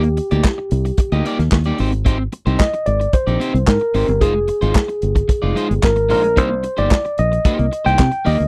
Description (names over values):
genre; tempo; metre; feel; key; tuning
disco; 111 BPM; 4/4; straight; C minor; A4 = 439 Hz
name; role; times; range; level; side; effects
tine electric piano; melody; 0.0-8.5 s; G4 to G5; -22 LUFS; equal; none
electric guitar at the edge of break-up; accompaniment; 0.0-8.4 s; Ab3 to Eb5; -24 LUFS; equal; none
fingered electric bass; bass; 0.0-8.5 s; F1 to C3; -21 LUFS; equal; none
warm soul drum kit; drums; 0.0-8.5 s; handclaps, hi-hat, kick drum, snare drum; -18 LUFS; equal; none
room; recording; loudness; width
light reverb; none; -17 LUFS; mono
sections
0.0-8.5 A section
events
none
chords
0.0 Ebmaj7; 1.8 Abmaj7; 4.2 Fm7; 6.4 Cm7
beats
0.45 0.98 1.52 | 2.06 2.60 3.14 3.68 | 4.22 4.76 5.29 5.83 | 6.37 6.91 7.45 7.99